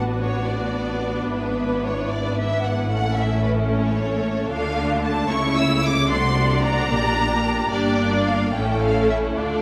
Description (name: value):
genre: quick classical-period movement for string orchestra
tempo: 74 BPM (dotted quarters)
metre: 6/8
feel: rubato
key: A major, D minor from 4.5 s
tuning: A4 = 440 Hz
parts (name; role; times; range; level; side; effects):
- rich symphonic violin section; second line; 0.0-9.6 s; E4 to D5; -29 LUFS; equal; none
- rich symphonic viola section; accompaniment; 0.0-9.6 s; A3 to E4; -28 LUFS; equal; none
- rich symphonic cello section; bass; 0.0-9.6 s; G2 to D3; -29 LUFS; equal; none
- warm studio double bass section; bass; 0.0-9.6 s; G1 to D2; -29 LUFS; equal; none
- warm symphonic violin section; melody; 0.2-9.6 s; B4 to E6; -28 LUFS; equal; none
room: moderate scoring stage reverb, RT60 1.9 s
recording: none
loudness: -21 LUFS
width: mono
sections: 0.0-9.6 A section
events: none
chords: 0.0 Bm7/A; 1.3 E7/G#; 2.9 A; 4.5 Dm; 5.3 A/C#; 6.1 D7/C; 6.9 Gm/Bb; 7.7 Gm; 8.5 A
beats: 0.49 | 1.30 2.12 | 2.91 3.71 | 4.51 5.30 | 6.10 6.91 | 7.71 8.53 | 9.37